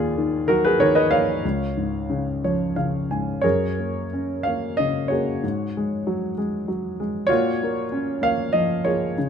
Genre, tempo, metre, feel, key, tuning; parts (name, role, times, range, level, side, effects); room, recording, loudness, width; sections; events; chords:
classical, lyrical solo piano; 87-98 BPM; 3/4; rubato; F# major; A4 = 440 Hz
dark grand piano; solo; 0.0-9.3 s; C#2 to G#5; -20 LUFS; equal
light reverb; close, detailed microphones; -20 LUFS; side -7 dB against mid
0.0-3.4 A section; 3.4-9.3 B section
grand piano fill 2.1-3.4
0.0 D#m; 1.4 C#; 3.4 F#add9; 5.4 C#sus4/G#; 7.3 F#maj7/A#